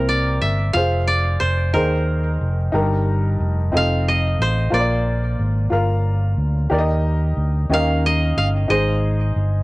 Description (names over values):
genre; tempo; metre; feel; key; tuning
slow gospel; 60 BPM (dotted quarters); 6/8; straight; Eb major; A4 = 440 Hz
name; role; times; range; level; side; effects
koto; melody; 0.0-9.6 s; Bb4 to F5; -23 LUFS; right 1 dB; cassette tape, analog delay
clear baby grand piano; accompaniment; 0.0-9.6 s; G2 to F5; -23 LUFS; left 1 dB; none
fingered electric bass; bass; 0.0-9.6 s; F1 to Eb2; -19 LUFS; equal; none
room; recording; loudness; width
light reverb, small room ambience; home recording on cassette; -17 LUFS; side -21 dB against mid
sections
0.0-9.6 A section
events
none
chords
0.0 C7; 0.7 Fm; 1.7 Ab/Eb; 2.7 Eb/G; 3.7 F7; 4.7 Bb; 6.7 Eb; 7.7 Eb7; 8.7 Ab